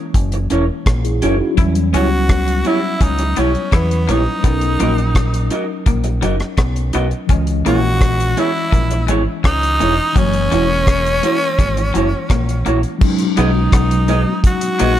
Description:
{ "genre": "lovers rock reggae", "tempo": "84 BPM", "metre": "4/4", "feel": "straight", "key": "B major", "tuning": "A4 = 441 Hz", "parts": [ { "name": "mellow tine electric piano", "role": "accompaniment", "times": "0.0-15.0 s", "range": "E3 to D#5", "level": "-22 LUFS", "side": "left 2 dB", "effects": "medium stereo tremolo" }, { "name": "deep dub fingered electric bass", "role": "bass", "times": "0.1-15.0 s", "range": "E1 to E2", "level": "-18 LUFS", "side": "equal", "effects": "none" }, { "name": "deep reggae drum kit", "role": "drums", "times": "0.1-15.0 s", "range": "crash cymbal, hi-hat, kick drum, rim click", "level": "-16 LUFS", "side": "equal", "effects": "none" }, { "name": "electric guitar through a small old amp", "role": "stabs", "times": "0.3-14.9 s", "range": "A#3 to D#5", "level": "-21 LUFS", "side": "right 2 dB", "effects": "none" }, { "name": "twangy electric guitar", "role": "riff", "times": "1.6-15.0 s", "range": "E3 to E4", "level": "-26 LUFS", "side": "left 8 dB", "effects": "warbly pitch drift" }, { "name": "raspy tenor saxophone", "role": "melody", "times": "2.0-15.0 s", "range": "B3 to F#4", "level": "-20 LUFS", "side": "equal", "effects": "tape echo" }, { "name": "mellow tonewheel organ", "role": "accompaniment", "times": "13.2-14.9 s", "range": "B2 to D#4", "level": "-28 LUFS", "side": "right 2 dB", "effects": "none" } ], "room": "light reverb", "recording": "none", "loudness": "-13 LUFS", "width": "side -11 dB against mid", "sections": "0.0-13.0 A section; 13.0-15.0 B section", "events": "none", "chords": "0.0 F#7; 1.6 Em6; 4.4 Bmaj7; 7.3 C#m7; 10.2 F#7; 13.0 B6" }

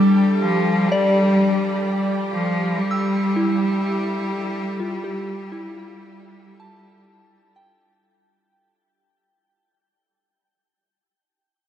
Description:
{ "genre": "ambient", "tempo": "63 BPM", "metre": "4/4", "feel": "straight", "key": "unclear", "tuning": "A4 = 440 Hz", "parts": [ { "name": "evolving wavetable pad", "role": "sustained chords", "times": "0.0-8.5 s", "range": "G3 to A4", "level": "-21 LUFS", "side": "right 1 dB", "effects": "chorus, built-in reverb, phaser" }, { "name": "soft synth bell", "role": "arpeggios", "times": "0.0-9.8 s", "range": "E4 to E6", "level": "-26 LUFS", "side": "equal", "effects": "chorus, tape echo" }, { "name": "analog drone", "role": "drone", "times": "0.0-8.6 s", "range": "G3 to D4", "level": "-34 LUFS", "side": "left 1 dB", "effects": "none" }, { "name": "rich cello", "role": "melody", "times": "0.4-7.6 s", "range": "F3 to G3", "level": "-23 LUFS", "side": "left 2 dB", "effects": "tape echo" } ], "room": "wet shimmer reverb, RT60 8.1 s", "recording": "none", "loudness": "-18 LUFS", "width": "side -10 dB against mid", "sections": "0.0-8.5 A section", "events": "fade-out 0.0-8.5", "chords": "0.0 Fadd9" }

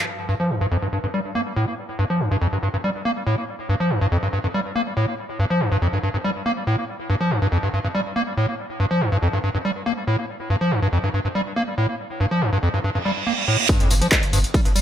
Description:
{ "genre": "driving peak-time techno", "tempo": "141 BPM", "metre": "4/4", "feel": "straight", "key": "G minor", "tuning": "A4 = 440 Hz", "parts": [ { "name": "punchy analog drum machine", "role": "drums", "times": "0.1-0.2, 13.7-14.8 s", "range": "crash cymbal, handclaps, hi-hat, ride cymbal, tambourine", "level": "-22 LUFS", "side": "equal", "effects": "overdrive, sidechain pumping on hats, low-pass filter on hats, sidechain pumping on perc, low-pass filter on perc, low-pass filter on snare, sidechain pumping on cymbals, low-pass filter on cymbals" }, { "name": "overdriven acid bass", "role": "riff", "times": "0.3-14.8 s", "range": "F2 to Bb3", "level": "-20 LUFS", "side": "equal", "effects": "distortion, wide subtle chorus, sidechain pumping, dub echo" }, { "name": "reverse cymbal and impact", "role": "sound effects", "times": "13.0-14.8 s", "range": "none", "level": "-25 LUFS", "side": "right 5 dB", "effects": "none" }, { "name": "electronic kick drum", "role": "drums", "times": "13.7-14.6 s", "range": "none", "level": "-19 LUFS", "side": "equal", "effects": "none" }, { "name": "saturated sub bass", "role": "bass", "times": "13.8-14.8 s", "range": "G1", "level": "-22 LUFS", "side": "equal", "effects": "overdrive, sidechain pumping, low-pass filter" } ], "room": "moderate plate reverb, RT60 1.5 s, digital ambience", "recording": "echo-heavy mix", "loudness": "-20 LUFS", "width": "side -10 dB against mid", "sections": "0.1-13.7 A section; 13.7-14.8 B section", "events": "filter sweep on drum 0.1-13.7; reverse cymbal 13.0-13.7; drop 13.7-14.8; impact 13.7-14.8", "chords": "0.1 N.C.; 13.7 G5" }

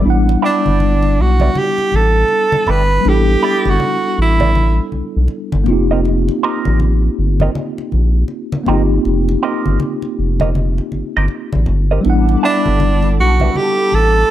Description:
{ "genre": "R&B, neo-soul", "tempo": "80 BPM", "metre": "4/4", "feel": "swing 63% on 16ths", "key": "unclear", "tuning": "A4 = 440 Hz", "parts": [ { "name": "mellow tine electric piano", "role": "accompaniment", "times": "0.0-14.3 s", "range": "G3 to F#5", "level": "-19 LUFS", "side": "left 1 dB", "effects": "medium stereo tremolo, plate reverb" }, { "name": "round analog bass", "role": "bass", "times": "0.0-14.2 s", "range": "F1 to B1", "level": "-14 LUFS", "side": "equal", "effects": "none" }, { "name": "congas", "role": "percussion", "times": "0.3-14.1 s", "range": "none", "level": "-23 LUFS", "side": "left 2 dB", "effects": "none" }, { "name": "semi-hollow electric guitar", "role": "second line", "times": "0.4-13.5 s", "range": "B3 to E5", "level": "-21 LUFS", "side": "right 7 dB", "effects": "wah, spring reverb, plate reverb" }, { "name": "breathy tenor saxophone", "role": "melody", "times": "0.5-4.9, 12.4-14.3 s", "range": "D4 to B4", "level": "-15 LUFS", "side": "right 2 dB", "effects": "plate reverb" }, { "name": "hollow soft pad", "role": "sustained chords", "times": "12.1-14.3 s", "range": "A4 to D6", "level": "-29 LUFS", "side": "right 1 dB", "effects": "ensemble chorus, plate reverb" } ], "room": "light reverb", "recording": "dark, warm production", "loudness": "-12 LUFS", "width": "side -12 dB against mid", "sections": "0.0-14.3 A section", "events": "none", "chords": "0.0 A9sus4; 5.7 F9sus4; 12.0 A9sus4" }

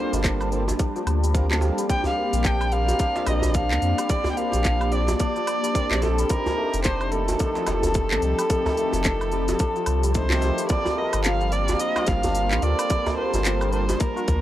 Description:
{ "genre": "organic downtempo", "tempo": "109 BPM", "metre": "4/4", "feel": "swing 60% on 16ths", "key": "G minor", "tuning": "A4 = 444 Hz", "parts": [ { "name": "rich kamancheh", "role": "melody", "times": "0.0-14.4 s", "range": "A4 to G5", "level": "-26 LUFS", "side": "equal", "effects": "analog delay" }, { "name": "pedal harmonium", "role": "accompaniment", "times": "0.0-13.8 s", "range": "Eb3 to Bb4", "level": "-31 LUFS", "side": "right 4 dB", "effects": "sidechain pumping, analog delay" }, { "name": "ethereal airy pad", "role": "sustained chords", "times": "0.0-14.4 s", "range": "F3 to A5", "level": "-31 LUFS", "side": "left 1 dB", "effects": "ensemble chorus, built-in reverb, sidechain pumping" }, { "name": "santur", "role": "arpeggios", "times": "0.0-14.4 s", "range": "F3 to F4", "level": "-30 LUFS", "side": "left 3 dB", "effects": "analog delay" }, { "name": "warm sub bass", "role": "bass", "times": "0.1-14.4 s", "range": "F1 to F2", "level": "-24 LUFS", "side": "equal", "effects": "transformer saturation" }, { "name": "organic electronic drum kit", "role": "drums", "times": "0.1-14.4 s", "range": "handclaps, hi-hat, shaker, woodblock", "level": "-29 LUFS", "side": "equal", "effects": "overdrive" }, { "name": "djembe", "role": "percussion", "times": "0.1-14.0 s", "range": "none", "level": "-29 LUFS", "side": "right 2 dB", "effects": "none" }, { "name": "electronic kick drum", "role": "drums", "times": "0.2-14.4 s", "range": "none", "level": "-24 LUFS", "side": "equal", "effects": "overdrive" } ], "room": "small room ambience", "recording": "dry, gritty hardware recording", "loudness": "-20 LUFS", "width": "side -13 dB against mid", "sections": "0.0-10.7 A section; 10.7-14.4 A section", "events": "none", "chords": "0.0 Gm11; 1.9 Bb69; 6.3 F7; 10.7 Gm11" }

